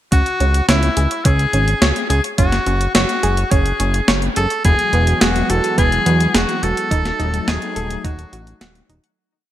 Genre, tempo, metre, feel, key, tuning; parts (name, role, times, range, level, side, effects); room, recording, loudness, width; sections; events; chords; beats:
synthwave; 106 BPM; 4/4; straight; C# minor; A4 = 441 Hz
bright tenor saxophone; melody; 0.1-8.6 s; E4 to A4; -20 LUFS; left 1 dB; ping-pong delay
analog pluck; arpeggios; 0.1-9.1 s; B3 to F#5; -25 LUFS; right 3 dB; chorus, ping-pong delay
fat analog bass; bass; 0.1-9.0 s; D#1 to E2; -18 LUFS; equal
clean 12-bit digital drum machine; drums; 0.1-9.1 s; hi-hat, snare drum; -19 LUFS; equal; overdrive, gated reverb
electronic kick drum; drums; 0.1-8.2 s; -16 LUFS; equal; overdrive
brassy analog pad; sustained chords; 4.6-9.2 s; E3 to F#4; -25 LUFS; equal; chorus, sidechain pumping
light reverb; bright 1980s-style digital production; -14 LUFS; side -12 dB against mid
0.1-9.2 verse
fade-out 6.2-9.2
0.1 C#m; 2.4 F#sus2; 4.6 Eadd9; 6.9 D#dim
| 0.12 0.69 1.25 1.82 | 2.38 2.95 3.52 4.08 | 4.65 5.21 5.78 6.35 | 6.91 7.48 8.04 8.61